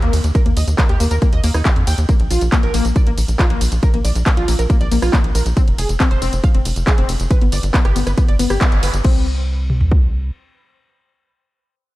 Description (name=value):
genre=uplifting trance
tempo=138 BPM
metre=4/4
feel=straight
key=unclear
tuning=A4 = 441 Hz
part: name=tight sequenced synth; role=arpeggios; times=0.0-9.2 s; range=Bb3 to G5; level=-23 LUFS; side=left 2 dB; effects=chorus, sidechain pumping, dub echo
part: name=tight sequencer bass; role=bass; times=0.0-10.3 s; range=F1 to F2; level=-18 LUFS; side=equal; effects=sidechain pumping
part: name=house drum kit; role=drums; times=0.0-9.1 s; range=crash cymbal, handclaps, hi-hat, ride cymbal, rim click, tambourine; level=-24 LUFS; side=equal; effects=overdrive, sidechain pumping on hats, sidechain pumping on cymbals, sidechain pumping on perc
part: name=house drum kit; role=drums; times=0.3-10.0 s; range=kick drum, toms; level=-15 LUFS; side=equal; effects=overdrive
room=digital ambience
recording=dark, warm production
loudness=-14 LUFS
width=side -17 dB against mid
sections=0.0-9.0 A section; 9.0-12.0 B section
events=drop 0.0-9.0; band accent 8.6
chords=0.0 Eb5; 2.1 N.C.; 5.6 F5; 7.3 G; 9.0 N.C.